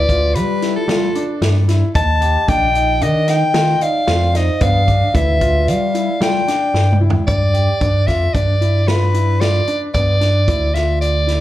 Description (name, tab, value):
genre	progressive instrumental, band music in an uneven meter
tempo	113 BPM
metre	5/4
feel	straight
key	G mixolydian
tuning	A4 = 440 Hz
part	bright soprano saxophone	melody	0.0-11.4 s	A4 to A5	-18 LUFS	left 1 dB	plate reverb, slapback echo, ping-pong delay
part	vibraphone with soft mallets	second line	0.0-7.0 s	F4 to Eb5	-24 LUFS	right 1 dB	plate reverb, slapback echo, ping-pong delay
part	rubbery square bass	bass	0.0-11.4 s	Bb1 to G3	-16 LUFS	equal	none
part	dark baby grand piano	arpeggios	0.1-11.4 s	B3 to G4	-24 LUFS	right 1 dB	plate reverb, slapback echo
part	vintage drum kit	drums	0.1-11.4 s	hi-hat, kick drum, snare drum, toms	-21 LUFS	equal	none
room	light reverb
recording	live gig heard through the venue's PA, club reverb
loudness	-13 LUFS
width	side -14 dB against mid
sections	0.0-7.3 A section; 7.3-11.4 B section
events	drum fill 6.7-7.3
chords	0.0 G9; 2.0 Ebmaj7; 4.6 G7(no3)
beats	0.35 0.89 1.42 | 1.95 2.48 3.02 3.55 4.08 | 4.61 5.14 5.68 6.21 6.74 | 7.27 7.81 8.34 8.87 9.41 | 9.94 10.47 11.01